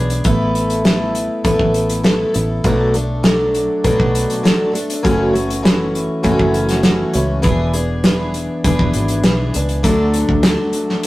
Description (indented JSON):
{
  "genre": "folk rock and heartland rock",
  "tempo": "100 BPM",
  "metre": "4/4",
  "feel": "straight",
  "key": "A major",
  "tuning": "A4 = 440 Hz",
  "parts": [
    { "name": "picked twelve-string acoustic guitar", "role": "accompaniment", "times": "0.0-11.1 s", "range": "F#2 to A4", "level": "-17 LUFS", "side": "left 1 dB", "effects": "none" },
    { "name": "fingered electric bass", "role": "bass", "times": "0.0-10.6 s", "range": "E1 to D2", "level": "-20 LUFS", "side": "equal", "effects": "none" },
    { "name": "loose indie drum kit", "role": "drums", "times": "0.1-11.1 s", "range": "hi-hat, kick drum, snare drum", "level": "-17 LUFS", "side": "equal", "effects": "none" }
  ],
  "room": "light reverb",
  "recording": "rough rehearsal-room recording",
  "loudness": "-14 LUFS",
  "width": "side -17 dB against mid",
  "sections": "0.0-9.8 A section; 9.8-11.1 B section",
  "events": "none",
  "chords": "0.2 Asus2; 2.6 Bm7; 5.0 F#m7; 7.4 E7; 9.8 D"
}